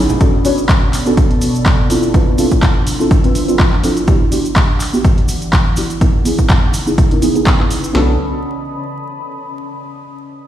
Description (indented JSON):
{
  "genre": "deep house",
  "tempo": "124 BPM",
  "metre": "4/4",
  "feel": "swing 55% on 16ths",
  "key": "unclear",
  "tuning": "A4 = 440 Hz",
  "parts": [
    { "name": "deep dark ambient pad", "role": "sustained chords", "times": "0.0-8.2 s", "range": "B3 to D#6", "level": "-24 LUFS", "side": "left 1 dB", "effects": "chorus, built-in reverb, sidechain pumping" },
    { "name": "deep mellow chord stab", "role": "stabs", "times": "0.0-8.1 s", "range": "B3 to C#5", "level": "-17 LUFS", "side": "right 1 dB", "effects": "chorus, cassette tape, sidechain pumping, digital delay" },
    { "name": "round analog bass", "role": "bass", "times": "0.0-0.1, 7.9-8.2 s", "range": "B1", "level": "-15 LUFS", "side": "equal", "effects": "sidechain pumping" },
    { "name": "warbly tape-like pad", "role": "texture", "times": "0.5-9.8 s", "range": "B2 to E6", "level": "-27 LUFS", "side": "equal", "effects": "chorus, built-in reverb, sidechain pumping" },
    { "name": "punchy analog drum machine", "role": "drums", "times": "0.1-7.9 s", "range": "handclaps, hi-hat", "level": "-21 LUFS", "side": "equal", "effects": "none" },
    { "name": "cabasa", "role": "percussion", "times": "0.1-7.9 s", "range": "none", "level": "-31 LUFS", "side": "equal", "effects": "none" },
    { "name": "punchy analog drum machine", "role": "drums", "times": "0.2-8.1 s", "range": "kick drum, snare drum", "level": "-12 LUFS", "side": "equal", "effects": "none" }
  ],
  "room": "light reverb",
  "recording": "played on a big sound system in a bare room, stone room reverb, vinyl crackle",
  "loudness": "-11 LUFS",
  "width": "side -12 dB against mid",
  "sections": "0.0-7.9 A section; 7.9-9.9 B section",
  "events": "fade-out on ambient pad 0.0-7.9; filter sweep on synth stab 0.0-7.9; filter sweep on ambient pad 0.0-7.9",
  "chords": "0.2 Bm9; 1.9 Dm9; 4.1 Em9; 6.0 C#m9; 7.9 Bm9"
}